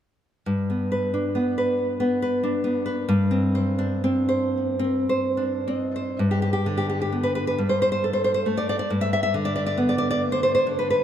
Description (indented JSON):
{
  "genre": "romantic piece for solo classical guitar",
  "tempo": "34-47 BPM (dotted quarters)",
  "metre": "6/8",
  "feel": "rubato",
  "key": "G major",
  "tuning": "A4 = 443 Hz",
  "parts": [
    { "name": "nylon-string guitar", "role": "solo", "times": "0.5-11.0 s", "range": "G2 to E5", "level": "-21 LUFS", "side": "equal", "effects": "ping-pong delay" }
  ],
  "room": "wet plate reverb, RT60 3.4 s",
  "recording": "dreamy mix soaked in reverb",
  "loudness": "-21 LUFS",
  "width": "side -10 dB against mid",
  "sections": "0.5-6.2 A section; 6.2-11.0 B section",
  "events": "none",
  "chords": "0.5 G; 3.1 Gsus4; 6.2 G; 7.6 Gsus24; 8.9 G",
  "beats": "| 0.46 1.78 | 3.08 4.54 | 6.20 7.60 | 8.90 10.21"
}